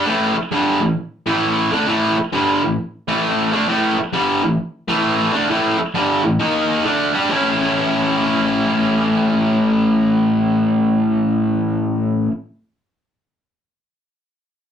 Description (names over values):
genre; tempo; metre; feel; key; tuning
rock; 133 BPM; 4/4; swing 65% on 8ths; A mixolydian; A4 = 440 Hz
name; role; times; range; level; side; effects
distorted electric guitar; solo; 0.0-12.3 s; G2 to G4; -15 LUFS; equal; overdrive
room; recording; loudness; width
moderate studio ambience, RT60 0.5 s; rough rehearsal-room recording, tube saturation; -15 LUFS; side -8 dB against mid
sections
0.0-7.3 A section; 7.3-10.9 B section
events
none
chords
0.0 A5; 6.4 D#5; 6.8 Dsus4; 7.3 A